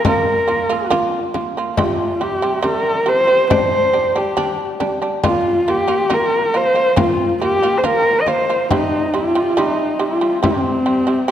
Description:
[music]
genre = mongolian traditional, Mongolian folk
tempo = 69 BPM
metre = 4/4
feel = straight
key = C minor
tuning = A4 = 438 Hz
[part]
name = dark horsehead fiddle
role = melody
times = 0.0-11.3 s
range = C4 to Eb5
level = -16 LUFS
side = equal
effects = none
[part]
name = frame drum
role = percussion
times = 0.0-11.2 s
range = none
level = -22 LUFS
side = left 3 dB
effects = none
[part]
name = shamisen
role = arpeggios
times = 0.1-11.3 s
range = C3 to F4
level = -20 LUFS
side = right 3 dB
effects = none
[sound]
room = wet concert hall reverb, RT60 1.8 s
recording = none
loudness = -14 LUFS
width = side -10 dB against mid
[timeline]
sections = 0.0-11.3 A section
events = none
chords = 0.0 Bb5; 1.8 C5; 3.5 G5; 5.2 Bb5; 8.7 C5

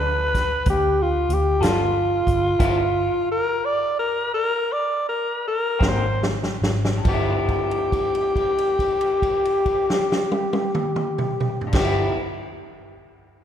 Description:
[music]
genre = slow blues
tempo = 46-62 BPM (dotted quarters)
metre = 12/8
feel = straight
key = G mixolydian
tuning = A4 = 440 Hz
[part]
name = growling tenor saxophone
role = melody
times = 0.0-12.1 s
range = F4 to D5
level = -22 LUFS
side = left 1 dB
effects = none
[part]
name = vintage muted fingered electric bass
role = bass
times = 0.0-12.1 s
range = G1 to D2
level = -26 LUFS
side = right 1 dB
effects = none
[part]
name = vintage drum kit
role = drums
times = 0.3-11.9 s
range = crash cymbal, hi-hat, kick drum, snare drum, toms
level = -25 LUFS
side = right 1 dB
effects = none
[part]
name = electric guitar through a small old amp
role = accompaniment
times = 1.6-12.2 s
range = G2 to A4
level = -30 LUFS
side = left 1 dB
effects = harmonic tremolo
[sound]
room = moderate concert hall reverb, RT60 2.2 s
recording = recorded in a church or concert hall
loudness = -19 LUFS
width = side -9 dB against mid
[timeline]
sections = 0.0-7.0 A section; 7.0-12.2 B section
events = slowing down 1.3-7.0; stop 2.6-5.8; drum fill 5.8-7.0; held note 7.0-11.7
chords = 0.0 G7; 2.6 G5; 5.8 Ab9; 7.0 G6

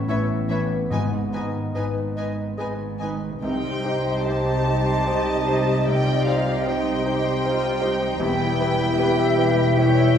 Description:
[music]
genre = cinematic, emotional film score for orchestra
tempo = 70-78 BPM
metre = 3/4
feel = rubato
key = unclear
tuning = A4 = 440 Hz
[part]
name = clear baby grand piano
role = accompaniment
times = 0.0-10.2 s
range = C2 to D#5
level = -27 LUFS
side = equal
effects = none
[part]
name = dark French horn section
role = sustained chords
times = 0.0-10.2 s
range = G3 to E4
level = -28 LUFS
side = left 3 dB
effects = none
[part]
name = concert harp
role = arpeggios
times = 0.0-10.2 s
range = G#2 to C6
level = -32 LUFS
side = left 4 dB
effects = none
[part]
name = rich studio violin section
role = melody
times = 0.1-10.2 s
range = E5 to A5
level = -29 LUFS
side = equal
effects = none
[part]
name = clear clarinet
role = second line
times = 0.1-10.2 s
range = G4 to B4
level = -32 LUFS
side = left 1 dB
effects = none
[part]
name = clear oboe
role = second line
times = 0.1-3.2 s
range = C#5 to D#5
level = -37 LUFS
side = right 1 dB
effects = none
[part]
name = dark studio violin section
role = second line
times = 0.1-10.2 s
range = B4 to Eb5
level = -32 LUFS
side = left 3 dB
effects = none
[part]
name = dark studio viola section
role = accompaniment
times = 0.1-10.2 s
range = C#4 to G4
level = -33 LUFS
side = right 3 dB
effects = none
[part]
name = rich studio double bass section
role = bass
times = 0.1-10.2 s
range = E1 to C2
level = -27 LUFS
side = right 1 dB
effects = none
[part]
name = warm studio cello section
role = bass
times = 0.1-10.2 s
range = E2 to C3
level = -29 LUFS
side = right 1 dB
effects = none
[part]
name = timpani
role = percussion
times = 0.9-2.1 s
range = G#2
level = -30 LUFS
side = left 4 dB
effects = none
[part]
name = silver concert flute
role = second line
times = 3.4-10.2 s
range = Eb5 to E5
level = -29 LUFS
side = equal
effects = none
[sound]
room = wet recital hall reverb, RT60 1.4 s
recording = recorded in a church or concert hall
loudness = -20 LUFS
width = side -8 dB against mid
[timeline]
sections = 0.0-3.4 A section; 3.4-10.2 B section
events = none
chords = 0.0 Aadd9; 0.9 G#m; 3.4 Cm; 8.2 Em

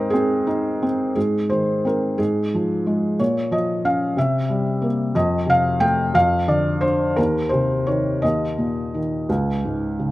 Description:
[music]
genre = classical, lyrical solo piano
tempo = 56-62 BPM (dotted quarters)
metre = 6/8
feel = rubato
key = Ab major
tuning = A4 = 444 Hz
[part]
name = felt-muted upright piano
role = solo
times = 0.0-10.1 s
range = Db2 to G5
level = -18 LUFS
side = equal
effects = none
[sound]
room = light reverb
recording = close, detailed microphones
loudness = -18 LUFS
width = side -17 dB against mid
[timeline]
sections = 0.0-1.2 A section; 1.2-10.1 B section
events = none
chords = 0.0 Ab; 2.2 Fm/Ab; 3.2 Bbm; 4.2 C7; 5.1 F; 6.1 Dm7/F; 7.2 Cm7/Eb; 8.2 Eb5; 9.3 Db5

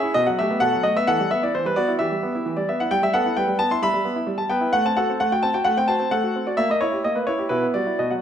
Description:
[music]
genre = classical-period piano sonatina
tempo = 130 BPM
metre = 4/4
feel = rubato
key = E minor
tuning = A4 = 438 Hz
[part]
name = warm concert grand piano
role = solo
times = 0.0-8.2 s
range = B2 to C6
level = -19 LUFS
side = equal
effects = none
[sound]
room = moderate recital hall reverb, RT60 1.6 s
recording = none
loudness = -19 LUFS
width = side -9 dB against mid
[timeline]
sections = 0.0-8.2 A section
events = none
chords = 0.1 B5; 1.1 Em; 2.9 Em/G; 4.7 F#dim/A; 6.6 A#dim7; 7.5 Em/B

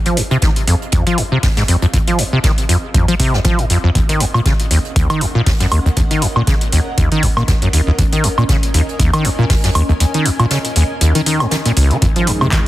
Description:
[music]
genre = acid house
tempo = 119 BPM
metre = 4/4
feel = swing 56% on 16ths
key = unclear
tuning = A4 = 440 Hz
[part]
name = granular cloud pad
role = texture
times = 0.0-12.7 s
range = C4 to Ab5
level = -27 LUFS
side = equal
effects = built-in reverb, sidechain pumping
[part]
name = acid bass, saw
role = riff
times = 0.1-12.6 s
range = Db2 to F3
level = -15 LUFS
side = equal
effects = overdrive, analog chorus, ping-pong delay
[part]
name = booming analog drum machine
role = drums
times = 0.1-12.6 s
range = handclaps, hi-hat, woodblock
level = -21 LUFS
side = equal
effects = none
[part]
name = soft brush drum kit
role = drums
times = 0.1-12.7 s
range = hi-hat, snare drum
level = -27 LUFS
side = right 2 dB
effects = high-pass filter on hats, high-pass filter on snare, high-pass filter on room
[part]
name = electronic kick drum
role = drums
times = 0.4-12.6 s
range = none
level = -16 LUFS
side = equal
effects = none
[part]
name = dark analog pad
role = sustained chords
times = 12.0-12.7 s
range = F3 to Ab4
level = -22 LUFS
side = equal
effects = chorus, sidechain pumping
[sound]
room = little or no reverb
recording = heavily compressed radio sound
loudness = -12 LUFS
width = side -15 dB against mid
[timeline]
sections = 0.0-12.7 A section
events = fade-in on ambient pad 0.0-12.7; kick drops out 10.0-12.0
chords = 0.0 Fm7; 4.0 Ebm7; 12.0 Fm7

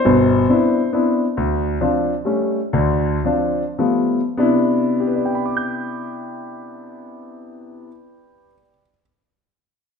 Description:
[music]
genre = jazz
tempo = 96-137 BPM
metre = 3/4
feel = swing 67% on 8ths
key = C major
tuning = A4 = 440 Hz
[part]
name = warm grand piano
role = solo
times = 0.0-9.0 s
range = G1 to G6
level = -17 LUFS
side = left 1 dB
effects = none
[sound]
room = wet large studio reverb, RT60 1.2 s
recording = minimal, uncompressed stereo recording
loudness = -16 LUFS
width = side -6 dB against mid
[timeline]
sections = 0.0-1.4 A section; 1.4-4.4 B section; 4.4-8.1 C section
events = slowing down 1.4-4.4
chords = 0.0 Cmaj9; 1.4 Dm7; 2.3 A7; 2.7 Dm7; 3.8 G9; 4.4 Cmaj9

